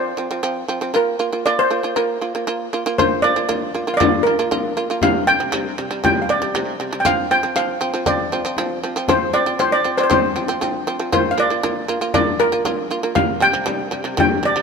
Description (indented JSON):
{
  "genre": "mongolian traditional, Mongolian folk",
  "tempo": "118 BPM",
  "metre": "4/4",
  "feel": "straight",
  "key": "Bb gong mode",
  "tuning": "A4 = 440 Hz",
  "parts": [
    { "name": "steel pan", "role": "melody", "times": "0.0-14.6 s", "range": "Bb4 to G5", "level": "-19 LUFS", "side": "equal", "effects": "none" },
    { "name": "shamisen", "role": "arpeggios", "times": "0.0-14.6 s", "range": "C3 to F4", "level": "-22 LUFS", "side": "right 3 dB", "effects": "none" },
    { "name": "frame drum", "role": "percussion", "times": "3.0-14.6 s", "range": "none", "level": "-23 LUFS", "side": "left 5 dB", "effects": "none" }
  ],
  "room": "moderate huge ambient reverb, RT60 4.0 s",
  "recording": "minimal, uncompressed stereo recording",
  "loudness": "-16 LUFS",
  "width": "side -5 dB against mid",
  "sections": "0.0-3.0 A section; 3.0-14.6 B section",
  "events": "none",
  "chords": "0.0 F5; 0.9 Bb5; 5.0 C5; 7.1 F5; 11.1 Bb5; 13.2 C5"
}